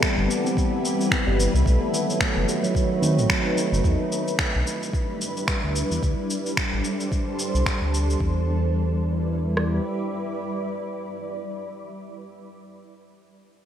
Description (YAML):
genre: organic downtempo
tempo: 110 BPM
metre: 4/4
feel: swing 58% on 16ths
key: E minor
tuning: A4 = 437 Hz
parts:
  - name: granular cloud pad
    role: sustained chords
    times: 0.0-12.3 s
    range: G3 to D5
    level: -28 LUFS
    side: equal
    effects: built-in reverb, wide subtle chorus, sidechain pumping
  - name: handpan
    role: arpeggios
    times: 0.0-3.8 s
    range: D#3 to D#4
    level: -25 LUFS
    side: right 1 dB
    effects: digital delay
  - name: electronic finger snaps and shaker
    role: drums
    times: 0.0-8.2 s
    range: none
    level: -27 LUFS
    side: equal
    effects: gated reverb
  - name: organic electronic drum kit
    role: drums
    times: 0.0-9.7 s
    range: kick drum, rim click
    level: -26 LUFS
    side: equal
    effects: none
  - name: smooth synth bass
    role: bass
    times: 0.2-9.8 s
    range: F#1 to E2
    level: -23 LUFS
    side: equal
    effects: sidechain pumping
room: moderate lush hall reverb, RT60 2.5 s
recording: bright 1980s-style digital production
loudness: -21 LUFS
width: side -10 dB against mid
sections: 0.0-3.8 A section; 3.8-8.2 B section; 8.2-12.6 C section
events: filter sweep on analog synth bass 3.8-8.2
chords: 0.0 Cmaj7; 1.7 B7; 3.8 Em7; 6.0 D7sus4; 8.2 Em7